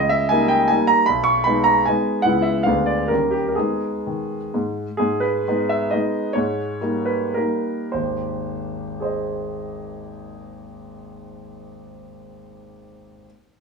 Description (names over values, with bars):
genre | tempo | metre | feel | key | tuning
classical, romantic triple-time dance for piano with dotted rhythms | 95-164 BPM | 3/4 | rubato | G# minor | A4 = 440 Hz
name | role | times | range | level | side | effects
clear concert grand piano | solo | 0.0-13.3 s | G#1 to C#6 | -19 LUFS | right 1 dB | none
room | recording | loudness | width
moderate studio reverb, RT60 0.7 s | none | -18 LUFS | side -4 dB against mid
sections
0.0-5.0 A section; 5.0-7.9 B section; 7.9-11.1 C section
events
slowing down 4.3-7.9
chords
0.0 D#7/C#; 1.1 G#m/B; 2.2 C#m7; 2.7 Ddim7; 3.1 D#7; 3.6 G#m; 6.4 D#7/G#; 7.9 G#